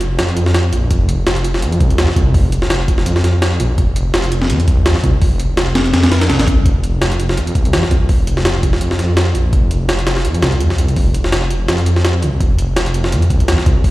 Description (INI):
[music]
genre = drum and bass, jungle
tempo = 167 BPM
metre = 4/4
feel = swing 55% on 16ths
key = unclear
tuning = A4 = 441 Hz
[part]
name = detuned saw bass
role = bass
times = 0.0-13.9 s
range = F1 to F2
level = -15 LUFS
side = equal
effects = tube saturation
[part]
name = jungle sampler-style drum kit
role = drums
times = 0.0-13.9 s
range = hi-hat, kick drum, snare drum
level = -15 LUFS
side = equal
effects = overdrive, studio reverb
[sound]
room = light reverb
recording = played on a big sound system in a bare room, large studio reverb, vinyl crackle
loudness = -12 LUFS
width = side -17 dB against mid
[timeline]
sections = 0.0-13.9 A section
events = none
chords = none